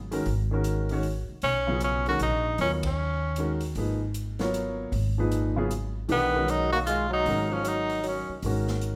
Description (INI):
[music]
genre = modal jazz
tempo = 154 BPM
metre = 3/4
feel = swing 64% on 8ths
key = G# dorian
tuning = A4 = 440 Hz
[part]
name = upright bass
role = bass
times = 0.0-9.0 s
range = G#1 to D#2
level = -32 LUFS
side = equal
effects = none
[part]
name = warm baby grand piano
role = accompaniment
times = 0.1-9.0 s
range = A#2 to C#5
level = -33 LUFS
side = equal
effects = none
[part]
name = swinging big-band drum kit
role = drums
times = 0.1-8.9 s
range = hi-hat, kick drum, ride cymbal, snare drum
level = -44 LUFS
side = equal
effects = none
[part]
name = bright tenor saxophone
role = melody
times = 1.4-3.6, 6.1-8.4 s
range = B3 to F#4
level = -29 LUFS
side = equal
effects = none
[part]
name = bright trombone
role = second line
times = 6.1-8.3 s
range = D#3 to A#3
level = -34 LUFS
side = equal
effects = none
[sound]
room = moderate recital hall reverb, RT60 1.3 s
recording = recorded in a church or concert hall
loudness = -27 LUFS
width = mono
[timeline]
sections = 0.0-9.0 A section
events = band accent 2.8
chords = 0.0 G#m11